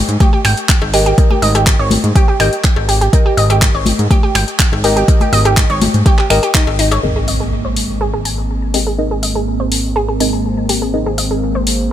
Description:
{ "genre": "progressive house", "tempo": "123 BPM", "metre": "4/4", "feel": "straight", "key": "Ab major", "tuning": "A4 = 440 Hz", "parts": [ { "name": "deep mellow chord stab", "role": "stabs", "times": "0.0-11.9 s", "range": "C4 to Eb5", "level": "-21 LUFS", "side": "left 2 dB", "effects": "chorus, sidechain pumping, ping-pong delay" }, { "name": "fat analog bass", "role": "bass", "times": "0.0-11.9 s", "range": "Ab1 to Ab2", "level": "-17 LUFS", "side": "equal", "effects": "sidechain pumping" }, { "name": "deep house drum kit", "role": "drums", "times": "0.1-11.8 s", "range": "finger snaps, handclaps, hi-hat", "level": "-18 LUFS", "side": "left 1 dB", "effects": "overdrive, sidechain pumping on hats" }, { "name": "analog pluck", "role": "arpeggios", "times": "0.2-11.6 s", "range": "Eb4 to Ab5", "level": "-19 LUFS", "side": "right 1 dB", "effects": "chorus, cassette tape, sidechain pumping, ping-pong delay" }, { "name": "electronic kick drum", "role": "drums", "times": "0.2-6.6 s", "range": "none", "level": "-12 LUFS", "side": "equal", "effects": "overdrive" }, { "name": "congas and cowbell", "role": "percussion", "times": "0.2-7.0 s", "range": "none", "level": "-20 LUFS", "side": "left 4 dB", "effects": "sidechain pumping on perc" }, { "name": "warm analog pad", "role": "sustained chords", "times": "7.0-11.9 s", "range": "Ab3 to C4", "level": "-21 LUFS", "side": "right 1 dB", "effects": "chorus, sidechain pumping" }, { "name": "impact", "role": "sound effects", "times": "7.0-9.0 s", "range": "none", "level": "-24 LUFS", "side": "equal", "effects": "none" } ], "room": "little or no reverb", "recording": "none", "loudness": "-11 LUFS", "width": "side -11 dB against mid", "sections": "0.0-7.0 A section; 7.0-11.9 B section", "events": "impact 7.0-9.0; filter sweep on synth pluck 7.0-11.9; filter sweep on analog synth pad 7.0-11.9", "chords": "0.0 Eb/Ab; 7.0 Abadd9" }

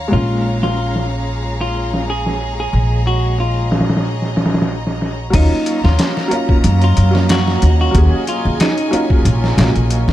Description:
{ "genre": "trip hop", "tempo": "92 BPM", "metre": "4/4", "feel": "swing 54% on 16ths", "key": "Eb minor", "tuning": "A4 = 440 Hz", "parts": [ { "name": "felt-muted upright piano", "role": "accompaniment", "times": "0.0-10.1 s", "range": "Gb3 to F5", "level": "-21 LUFS", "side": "equal", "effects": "tremolo, tape echo" }, { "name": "clear symphonic violin section", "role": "sustained chords", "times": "0.0-10.1 s", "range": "Ab4 to Bb5", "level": "-27 LUFS", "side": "left 1 dB", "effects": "none" }, { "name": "upright bass", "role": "bass", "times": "0.0-10.1 s", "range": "Bb1 to Gb2", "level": "-15 LUFS", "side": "equal", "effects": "none" }, { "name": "clean electric guitar", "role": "melody", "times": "0.1-9.1 s", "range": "Eb4 to Ab4", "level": "-22 LUFS", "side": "equal", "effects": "vintage 12-bit sampler grit, dub echo" }, { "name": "trip hop sampler-style drum kit", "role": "drums", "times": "0.1-10.1 s", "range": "crash cymbal, hi-hat, kick drum, snare drum", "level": "-18 LUFS", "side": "equal", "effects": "low-pass filter on hats, low-pass filter on snare, low-pass filter on cymbals, low-pass filter on kick, low-pass filter on room" } ], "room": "small room ambience", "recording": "dark, warm production", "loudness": "-13 LUFS", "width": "side -13 dB against mid", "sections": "0.0-5.3 A section; 5.3-10.1 B section", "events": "none", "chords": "0.1 Bbm7; 5.3 Ebm7" }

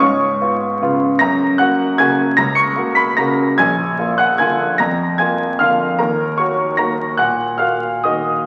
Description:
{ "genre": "classical, piano waltz", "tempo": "151 BPM", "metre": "3/4", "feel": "uneven beats, rubato", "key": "F# major", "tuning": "A4 = 441 Hz", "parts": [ { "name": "clear grand piano", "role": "solo", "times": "0.0-8.5 s", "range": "A#1 to C#7", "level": "-16 LUFS", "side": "equal", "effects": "none" } ], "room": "wet recital hall reverb, RT60 1.4 s", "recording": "very old 78 rpm record, vinyl crackle", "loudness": "-16 LUFS", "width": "mono", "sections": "0.0-8.5 A section", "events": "none", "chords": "0.0 C#7; 1.2 F#; 3.6 A#7; 6.0 D#m" }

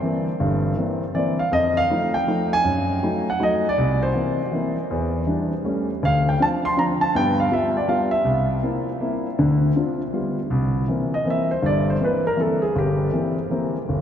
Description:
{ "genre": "jazz", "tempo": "160 BPM", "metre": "3/4", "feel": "swing 63% on 8ths", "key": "C mixolydian", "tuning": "A4 = 441 Hz", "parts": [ { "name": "warm concert grand piano", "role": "solo", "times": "0.0-14.0 s", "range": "G1 to C6", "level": "-19 LUFS", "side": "equal", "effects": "none" } ], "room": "wet cathedral reverb, RT60 5.6 s", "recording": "in a vast, echoing space", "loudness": "-19 LUFS", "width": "side -9 dB against mid", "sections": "0.0-10.5 A section; 10.5-14.0 B section", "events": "grand piano solo 10.5-14.0", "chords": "0.0 C7; 1.5 F7; 2.6 F#m69; 3.8 C7; 4.9 Em7; 5.6 A7; 6.0 Dm7; 7.1 G7; 8.3 C7; 9.4 Dm7; 10.1 G7; 10.5 C7" }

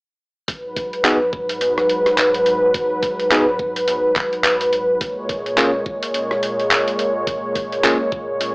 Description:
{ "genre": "glitch hop", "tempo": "106 BPM", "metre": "4/4", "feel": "swing 59% on 16ths", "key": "G# minor", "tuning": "A4 = 440 Hz", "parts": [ { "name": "warm analog pad", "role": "sustained chords", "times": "0.5-8.5 s", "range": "G#2 to C#5", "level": "-18 LUFS", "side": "equal", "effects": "chorus, vintage 12-bit sampler grit, sidechain pumping" }, { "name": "boom bap sampler-style drum kit", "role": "drums", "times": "0.5-8.5 s", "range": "handclaps, hi-hat, rim click", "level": "-20 LUFS", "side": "equal", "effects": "studio reverb, cassette tape" }, { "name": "electronic kick drum", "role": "drums", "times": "0.5-8.3 s", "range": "none", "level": "-30 LUFS", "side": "equal", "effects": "studio reverb, cassette tape" }, { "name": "bell-like tine electric piano", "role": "stabs", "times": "1.0-8.0 s", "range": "A#3 to G#4", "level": "-20 LUFS", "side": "equal", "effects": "sidechain pumping, low-pass filter, analog delay" } ], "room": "wet booth ambience, RT60 0.2 s", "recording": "home recording on cassette, AM radio sound", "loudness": "-16 LUFS", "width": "side -36 dB against mid", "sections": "0.5-8.5 A section", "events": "build-up 0.5-8.5; filter sweep on tine electric piano 0.5-8.5", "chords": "0.5 G#m7; 5.0 A#m7" }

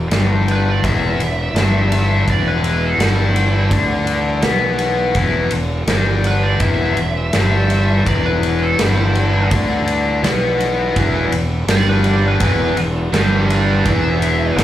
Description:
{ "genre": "quiet-loud alternative rock", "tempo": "83 BPM", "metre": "4/4", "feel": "straight", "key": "E minor", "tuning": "A4 = 438 Hz", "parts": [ { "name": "electric guitar through a small old amp", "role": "arpeggios", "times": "0.0-14.6 s", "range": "E2 to B3", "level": "-28 LUFS", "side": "right 2 dB", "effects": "none" }, { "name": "overdriven electric guitar", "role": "riff", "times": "0.0-14.6 s", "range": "E2 to D4", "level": "-19 LUFS", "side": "left 4 dB", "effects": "none" }, { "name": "fuzz fingered electric bass", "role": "bass", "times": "0.0-14.6 s", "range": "E1 to D2", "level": "-18 LUFS", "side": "equal", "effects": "overdrive" }, { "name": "big rock drum kit", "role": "drums", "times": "0.1-14.6 s", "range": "kick drum, ride cymbal, snare drum", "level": "-21 LUFS", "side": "equal", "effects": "none" }, { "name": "high-gain lead guitar", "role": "melody", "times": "0.5-14.6 s", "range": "E4 to E5", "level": "-23 LUFS", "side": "right 3 dB", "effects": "distortion, tape echo" }, { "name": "overdriven electric guitar", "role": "riff", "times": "11.0-14.6 s", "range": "E2 to G3", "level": "-22 LUFS", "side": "right 8 dB", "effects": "slapback echo" } ], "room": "little or no reverb", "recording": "live gig heard through the venue's PA, club reverb", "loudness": "-14 LUFS", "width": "side -12 dB against mid", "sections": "0.0-14.6 A section", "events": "lead electric guitar solo 0.0-14.6", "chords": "0.0 Em" }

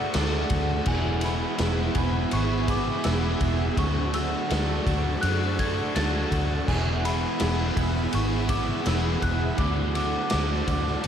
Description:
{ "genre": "rock, shoegaze and dream pop", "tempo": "83 BPM", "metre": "4/4", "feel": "straight", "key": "E mixolydian", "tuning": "A4 = 441 Hz", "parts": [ { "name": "worn celesta", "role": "melody", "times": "0.0-11.1 s", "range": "E5 to A6", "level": "-34 LUFS", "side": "left 1 dB", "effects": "analog delay" }, { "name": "airy breathy pad", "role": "sustained chords", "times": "0.0-11.1 s", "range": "G#4 to C#6", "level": "-36 LUFS", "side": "equal", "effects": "chorus" }, { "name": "overdriven electric guitar", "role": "riff", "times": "0.0-11.0 s", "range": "D3 to A4", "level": "-29 LUFS", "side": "right 8 dB", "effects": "reverse reverb" }, { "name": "overdriven semi-hollow guitar", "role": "riff", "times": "0.0-11.1 s", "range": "D3 to F#4", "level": "-32 LUFS", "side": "left 5 dB", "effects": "wide subtle chorus" }, { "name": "raw garage drum kit", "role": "drums", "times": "0.1-11.1 s", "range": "crash cymbal, kick drum, ride cymbal, snare drum", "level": "-29 LUFS", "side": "left 1 dB", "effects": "none" }, { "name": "vintage muted fingered electric bass", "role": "bass", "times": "0.2-11.0 s", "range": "E1 to F#2", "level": "-27 LUFS", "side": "equal", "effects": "none" } ], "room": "wet lush hall reverb, RT60 2.2 s", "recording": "dreamy mix soaked in reverb", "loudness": "-23 LUFS", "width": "side -8 dB against mid", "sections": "0.0-11.1 A section", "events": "none", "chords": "0.0 Dmaj7; 0.9 Eadd9; 3.8 Dmaj7; 6.7 Eadd9; 9.6 D" }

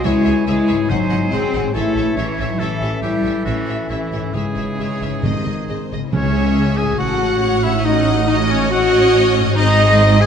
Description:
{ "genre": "classical, dramatic, fast romantic movement for symphony orchestra", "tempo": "140 BPM", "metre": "4/4", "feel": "straight", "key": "C# minor", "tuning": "A4 = 439 Hz", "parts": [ { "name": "rich symphonic violin section", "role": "melody", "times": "0.0-10.3 s", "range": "D#5 to F#5", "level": "-27 LUFS", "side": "left 3 dB", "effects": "none" }, { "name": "clear clarinet", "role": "second line", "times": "0.0-10.3 s", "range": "C#4 to C#5", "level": "-27 LUFS", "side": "equal", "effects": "none" }, { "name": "clear oboe", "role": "second line", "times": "0.0-10.3 s", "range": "E4 to G#5", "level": "-26 LUFS", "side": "right 2 dB", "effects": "none" }, { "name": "silver concert flute", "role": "second line", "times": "0.0-10.3 s", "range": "B#4 to G#5", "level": "-26 LUFS", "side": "equal", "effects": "none" }, { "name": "mellow bassoon", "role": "accompaniment", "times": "0.0-5.9 s", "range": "D#3 to F#3", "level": "-32 LUFS", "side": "right 2 dB", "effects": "none" }, { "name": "mellow French horn section", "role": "sustained chords", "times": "0.0-10.3 s", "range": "G#3 to G#4", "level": "-20 LUFS", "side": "left 3 dB", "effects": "none" }, { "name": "concert harp", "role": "arpeggios", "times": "0.0-10.3 s", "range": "G#2 to C#5", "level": "-26 LUFS", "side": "left 7 dB", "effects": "none" }, { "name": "warm symphonic cello section", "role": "bass", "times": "0.0-10.3 s", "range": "C#2 to B#3", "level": "-22 LUFS", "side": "right 2 dB", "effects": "none" }, { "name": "warm symphonic violin section", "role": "second line", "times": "0.1-10.3 s", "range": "A4 to F#5", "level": "-29 LUFS", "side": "left 2 dB", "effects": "none" }, { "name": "warm symphonic viola section", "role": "accompaniment", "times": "0.1-10.3 s", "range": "B#3 to B#4", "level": "-27 LUFS", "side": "right 2 dB", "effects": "none" }, { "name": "warm chamber double bass section", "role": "bass", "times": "0.1-10.3 s", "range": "G#1 to C#2", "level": "-23 LUFS", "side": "right 3 dB", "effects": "none" }, { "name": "timpani", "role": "percussion", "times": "0.1-1.5, 5.2-6.7 s", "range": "G#2 to C#3", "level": "-24 LUFS", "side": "equal", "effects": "none" } ], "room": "moderate scoring stage reverb, RT60 1.8 s", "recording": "nothing above 10.8 kHz", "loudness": "-15 LUFS", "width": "side -7 dB against mid", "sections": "0.0-6.1 A section; 6.1-10.3 B section", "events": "none", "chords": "0.1 C#m; 0.9 G#7; 1.7 A; 2.6 A7; 4.3 C#m/G#; 5.2 G#; 6.1 C#m; 7.0 F#m/A; 7.9 D#m7b5/A; 9.6 G#" }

